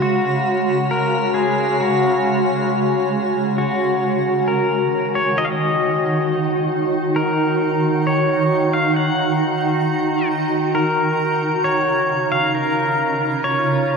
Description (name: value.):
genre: ambient.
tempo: 67 BPM.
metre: 4/4.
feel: straight.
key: Eb minor.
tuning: A4 = 438 Hz.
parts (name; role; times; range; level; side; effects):
pedal steel guitar; melody; 0.0-14.0 s; Gb4 to Gb5; -20 LUFS; left 1 dB; diffuse ambient delay.
granular cloud pad; sustained chords; 0.0-14.0 s; Db3 to Bb5; -18 LUFS; right 1 dB; built-in reverb.
room: wet cathedral reverb, RT60 5.3 s.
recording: cassette tape, nothing above 10.7 kHz.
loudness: -16 LUFS.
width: side -4 dB against mid.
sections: 0.0-3.6 A section; 3.6-14.0 A section.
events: none.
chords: 0.0 Dbsus4; 3.6 Ebm; 10.8 Bbm/Db.